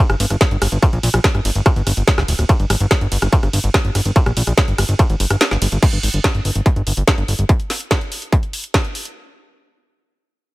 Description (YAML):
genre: psychedelic trance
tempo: 144 BPM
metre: 4/4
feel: straight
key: G phrygian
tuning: A4 = 442 Hz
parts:
  - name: fat analog bass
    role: bass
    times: 0.1-7.4 s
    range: D1 to Bb1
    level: -17 LUFS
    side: equal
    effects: none
  - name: drum and bass drum kit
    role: drums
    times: 0.1-9.1 s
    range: crash cymbal, hi-hat, ride cymbal, rim click, snare drum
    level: -20 LUFS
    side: equal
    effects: overdrive
  - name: electronic kick drum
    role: drums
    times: 0.4-8.8 s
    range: none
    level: -15 LUFS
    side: equal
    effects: distortion, overdrive
room: little or no reverb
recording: none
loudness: -14 LUFS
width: side -20 dB against mid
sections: 0.0-5.8 A section; 5.8-9.2 B section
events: drop 0.0-5.8; kick drops out 5.4-5.8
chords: none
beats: 0.41 | 0.82 1.24 1.66 2.08 | 2.49 2.91 3.33 3.74 | 4.16 4.58 4.99 5.41 | 5.83 6.24 6.66 7.08 | 7.49 7.91 8.32 8.74